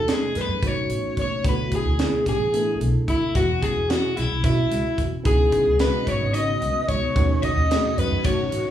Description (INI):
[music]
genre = electric jazz fusion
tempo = 220 BPM (eighths)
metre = 7/8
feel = straight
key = unclear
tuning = A4 = 441 Hz
[part]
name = breathy alto saxophone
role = melody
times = 0.0-8.7 s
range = E4 to D#5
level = -26 LUFS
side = left 1 dB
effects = none
[part]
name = overdriven semi-hollow guitar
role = second line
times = 0.0-8.7 s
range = E4 to D#5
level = -27 LUFS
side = left 2 dB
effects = none
[part]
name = tine electric piano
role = accompaniment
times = 0.0-8.7 s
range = G#3 to A4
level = -29 LUFS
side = right 1 dB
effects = medium stereo tremolo, phaser
[part]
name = upright bass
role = bass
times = 0.0-8.7 s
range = G#1 to F#2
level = -25 LUFS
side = equal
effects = none
[part]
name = tight funk drum kit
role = drums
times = 0.1-8.6 s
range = hi-hat, kick drum, snare drum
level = -26 LUFS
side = equal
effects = none
[part]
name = string machine, full ensemble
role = sustained chords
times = 5.2-8.7 s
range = C#3 to D#5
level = -30 LUFS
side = left 1 dB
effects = phaser, ensemble chorus
[sound]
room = moderate large studio reverb, RT60 0.8 s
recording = band playing live in one room, studio reverb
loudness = -19 LUFS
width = side -11 dB against mid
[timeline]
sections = 0.0-8.7 A section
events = none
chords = 0.0 B9/D#; 1.4 D69; 3.4 E6; 5.3 C#m9; 7.2 B9/D#